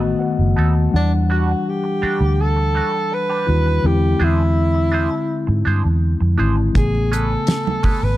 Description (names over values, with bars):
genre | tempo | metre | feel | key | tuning
lush 1970s-style soul | 82 BPM | 4/4 | straight | unclear | A4 = 440 Hz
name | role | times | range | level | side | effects
mellow tenor saxophone | melody | 0.0-8.2 s | D4 to B4 | -22 LUFS | right 1 dB | none
mellow tine electric piano | accompaniment | 0.0-8.2 s | C#3 to A5 | -22 LUFS | left 4 dB | none
twangy electric guitar | riff | 0.0-8.1 s | G3 to B#4 | -27 LUFS | right 5 dB | wah
vintage muted fingered electric bass | bass | 0.0-8.2 s | F#1 to G#2 | -17 LUFS | equal | none
damped 70s drum kit | drums | 6.8-8.0 s | hi-hat, kick drum, snare drum | -18 LUFS | equal | none
congas | percussion | 6.8-8.0 s | none | -28 LUFS | right 7 dB | none
room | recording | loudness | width
studio reverb | dark, warm production | -15 LUFS | side -15 dB against mid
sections
0.0-8.2 A section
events
tine electric piano fill 0.0-0.9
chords
0.0 B7; 0.9 Em9; 3.8 E7b13; 6.8 Amaj9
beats
0.20 | 0.93 1.66 2.38 3.11 | 3.84 4.57 5.29 6.02 | 6.75 7.48